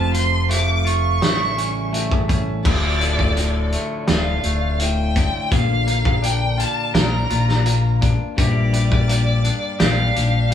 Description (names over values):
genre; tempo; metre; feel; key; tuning
post-rock; 84 BPM; 4/4; straight; D minor; A4 = 440 Hz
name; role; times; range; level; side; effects
clear violin; melody; 0.0-10.5 s; D5 to D6; -24 LUFS; right 1 dB; none
pedal steel guitar; sustained chords; 0.0-10.5 s; C3 to G4; -31 LUFS; right 1 dB; none
twangy electric guitar; arpeggios; 0.0-10.5 s; D2 to Bb4; -27 LUFS; left 3 dB; none
vibraphone with medium mallets; arpeggios; 0.0-10.5 s; C5 to F5; -33 LUFS; right 2 dB; none
growling fingered electric bass; bass; 0.0-10.5 s; D1 to Bb1; -20 LUFS; left 1 dB; overdrive
loose indie drum kit; drums; 0.1-10.5 s; crash cymbal, hi-hat, kick drum, snare drum; -21 LUFS; equal; none
room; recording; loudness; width
moderate studio reverb, RT60 0.5 s; band playing live in one room; -16 LUFS; side -9 dB against mid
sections
0.0-2.7 A section; 2.7-10.5 B section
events
none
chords
0.0 F; 1.2 A7; 2.7 Dm; 5.5 Bb; 8.4 Gm/Bb